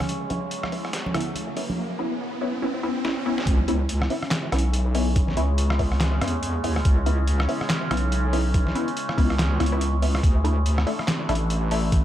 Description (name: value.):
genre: deep dubstep.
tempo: 142 BPM.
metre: 4/4.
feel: swing 59% on 16ths, half-time.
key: C# phrygian.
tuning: A4 = 440 Hz.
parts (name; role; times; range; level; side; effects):
overtone-sweeping drone; sustained chords; 0.0-12.0 s; C#3 to E4; -31 LUFS; right 1 dB; chorus, built-in reverb.
filtered dub chord stab; stabs; 0.0-11.9 s; A3 to E4; -29 LUFS; left 2 dB; phaser, lush chorus, dub echo.
trip hop sampler-style drum kit; drums; 0.0-12.0 s; handclaps, hi-hat, rim click, snare drum; -29 LUFS; equal; high-pass filter on hats, high-pass filter on snare.
congas; percussion; 0.0-1.8 s; none; -31 LUFS; right 1 dB; none.
riser; sound effects; 0.0-3.5 s; none; -33 LUFS; right 2 dB; none.
wobble bass; bass; 3.5-12.0 s; A1 to E2; -22 LUFS; equal; chorus.
electronic kick drum; drums; 3.5-12.0 s; none; -20 LUFS; equal; none.
room: light reverb, digital ambience.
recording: none.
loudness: -21 LUFS.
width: side -12 dB against mid.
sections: 0.0-3.5 A section; 3.5-12.0 B section.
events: build-up 0.0-3.5; riser 0.0-3.5; filter sweep on synth stab 0.0-3.5; drum fill 3.0-3.5; drop 3.5-12.0.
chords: 0.0 C#m7; 10.2 Dsus2.